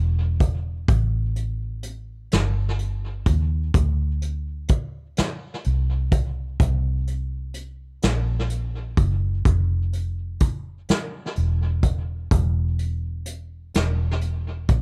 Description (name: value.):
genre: slow six-eight R&B.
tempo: 42 BPM (dotted quarters).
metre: 6/8.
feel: straight.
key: unclear.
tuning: A4 = 440 Hz.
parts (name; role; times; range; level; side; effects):
vintage muted fingered electric bass; bass; 0.0-14.8 s; E1 to D#2; -26 LUFS; equal; none.
vintage brush drum kit; drums; 0.4-14.8 s; hi-hat, kick drum, snare drum; -24 LUFS; equal; tape echo.
room: little or no reverb.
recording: echo-heavy mix.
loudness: -24 LUFS.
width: mono.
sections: 0.0-14.8 A section.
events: none.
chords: none.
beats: | 0.89 2.31 | 3.74 5.17 | 6.60 8.03 | 9.46 10.89 | 12.31 13.74.